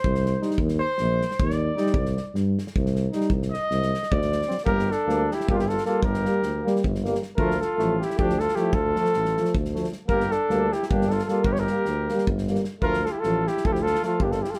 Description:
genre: balkan folk, Balkan brass band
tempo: 309 BPM (eighths)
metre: 7/8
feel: straight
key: C minor, G minor from 4.7 s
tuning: A4 = 442 Hz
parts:
  - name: warm trumpet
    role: second line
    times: 0.0-14.6 s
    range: D4 to Eb5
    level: -33 LUFS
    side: equal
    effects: none
  - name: warm tuba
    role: bass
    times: 0.0-14.4 s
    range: G1 to G2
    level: -29 LUFS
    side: equal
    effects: none
  - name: natural country drum kit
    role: percussion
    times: 0.0-14.6 s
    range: kick drum, snare drum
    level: -32 LUFS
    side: equal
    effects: none
  - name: bright trombone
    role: accompaniment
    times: 0.4-14.4 s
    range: A3 to Eb4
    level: -32 LUFS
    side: equal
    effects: none
  - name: mellow euphonium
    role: accompaniment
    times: 0.4-14.4 s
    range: F3 to G3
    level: -32 LUFS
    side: equal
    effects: none
  - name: mellow flugelhorn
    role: melody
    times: 4.7-14.6 s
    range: F4 to C#5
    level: -28 LUFS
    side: equal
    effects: none
room: moderate studio reverb, RT60 0.6 s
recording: heard from further back in the room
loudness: -24 LUFS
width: mono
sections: 0.0-4.7 A section; 4.7-14.6 B section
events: trumpet solo 0.0-4.7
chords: 0.0 Cm; 0.6 Eb5; 2.0 Cm; 4.1 D7(no3); 4.7 Gm; 7.4 Dm; 10.1 Gm; 12.8 Dm

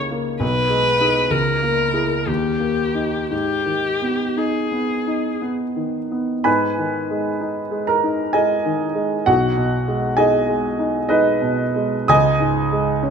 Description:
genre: classical, romantic duo for viola and grand piano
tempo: 56-66 BPM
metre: 3/4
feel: rubato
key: G# minor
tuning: A4 = 442 Hz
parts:
  - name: clear concert grand piano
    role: accompaniment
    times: 0.0-13.1 s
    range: B1 to D#6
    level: -18 LUFS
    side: right 1 dB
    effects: none
  - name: rich viola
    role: melody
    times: 0.4-5.4 s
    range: G4 to B4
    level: -20 LUFS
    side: left 2 dB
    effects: none
room: moderate scoring stage reverb, RT60 2.0 s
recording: close, detailed microphones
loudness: -17 LUFS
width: side -6 dB against mid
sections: 0.0-6.5 A section; 6.5-13.1 A section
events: none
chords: 0.4 G#m/B; 1.3 A#m7b5/C#; 2.3 D#; 3.3 G#m; 9.3 G#m/B; 12.1 C#5

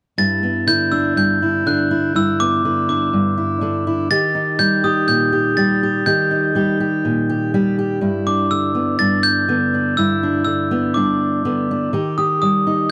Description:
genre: folk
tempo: 123 BPM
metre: 4/4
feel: straight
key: G major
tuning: A4 = 441 Hz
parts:
  - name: glockenspiel with hard plastic mallets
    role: melody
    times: 0.2-12.9 s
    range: D6 to A6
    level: -21 LUFS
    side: equal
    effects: none
  - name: fingerpicked steel-string acoustic guitar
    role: accompaniment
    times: 0.2-12.9 s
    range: G2 to G4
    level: -20 LUFS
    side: equal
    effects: none
room: little or no reverb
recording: dry, close 1970s-style studio recording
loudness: -18 LUFS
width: mono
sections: 0.2-8.0 A section; 8.0-12.9 B section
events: none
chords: 0.2 G6; 4.1 Eb; 8.0 G6; 11.9 Eb

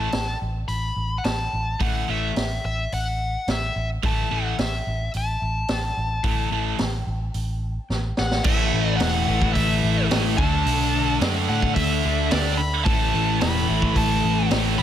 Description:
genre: hard rock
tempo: 109 BPM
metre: 4/4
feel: straight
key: unclear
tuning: A4 = 438 Hz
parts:
  - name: smooth overdriven lead guitar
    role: melody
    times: 0.0-14.8 s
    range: D5 to B5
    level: -27 LUFS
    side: left 2 dB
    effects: none
  - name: overdriven semi-hollow guitar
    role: riff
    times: 0.0-14.8 s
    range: A2 to D4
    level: -28 LUFS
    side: left 10 dB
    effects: none
  - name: scooped high-gain guitar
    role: riff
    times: 0.0-14.8 s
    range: A2 to D4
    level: -27 LUFS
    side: right 14 dB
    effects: distortion
  - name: vintage muted picked electric bass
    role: bass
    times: 0.0-14.8 s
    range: E1 to A2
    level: -25 LUFS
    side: equal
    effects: none
  - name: raw garage drum kit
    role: drums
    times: 0.1-14.6 s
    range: crash cymbal, hi-hat, kick drum, snare drum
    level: -26 LUFS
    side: equal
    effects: none
  - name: tonewheel organ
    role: sustained chords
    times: 8.4-14.8 s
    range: A3 to E5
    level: -36 LUFS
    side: right 1 dB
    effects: none
  - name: distorted electric guitar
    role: riff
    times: 8.4-14.8 s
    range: A2 to D4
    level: -28 LUFS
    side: equal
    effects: distortion
room: small room ambience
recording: none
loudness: -20 LUFS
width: side -10 dB against mid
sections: 0.0-8.5 A section; 8.5-14.8 B section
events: drum fill 7.9-8.5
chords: 0.0 A5; 10.4 D5; 12.9 A5

